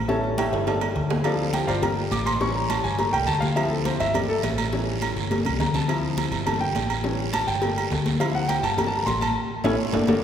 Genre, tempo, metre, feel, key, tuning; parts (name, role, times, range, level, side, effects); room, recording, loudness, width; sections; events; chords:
latin, salsa; 207 BPM; 4/4; straight; A4 = 441 Hz
hollow-body short-scale fingered electric bass; bass; 0.0-10.2 s; G1 to D2; -28 LUFS; equal
warm grand piano; accompaniment; 0.1-10.2 s; E3 to D6; -25 LUFS; left 1 dB
congas; percussion; 0.1-10.1 s; -31 LUFS; right 1 dB
cowbell; percussion; 0.1-10.1 s; -32 LUFS; left 2 dB
timbales and agogo bells; percussion; 0.4-10.2 s; -30 LUFS; right 6 dB
guiro; percussion; 1.2-10.1 s; -36 LUFS; right 6 dB
wet church reverb, RT60 3.0 s; recorded in a church or concert hall; -21 LUFS; side -9 dB against mid
0.0-10.2 A section
grand piano solo 0.0-10.2; drum fill 0.4-1.2, 5.0-5.9, 9.4-10.2; band accent 9.4-10.2
0.1 A7; 0.7 Gmadd9; 1.2 Dm7; 1.8 Gmadd9; 2.4 A7; 3.0 Gmadd9; 3.6 Dm7; 4.1 Gmadd9; 4.7 A7; 5.3 Gmadd9; 5.9 Dm7; 6.5 Gmadd9; 7.0 A7; 7.6 Gmadd9; 8.2 Dm7; 8.8 Gmadd9; 9.4 A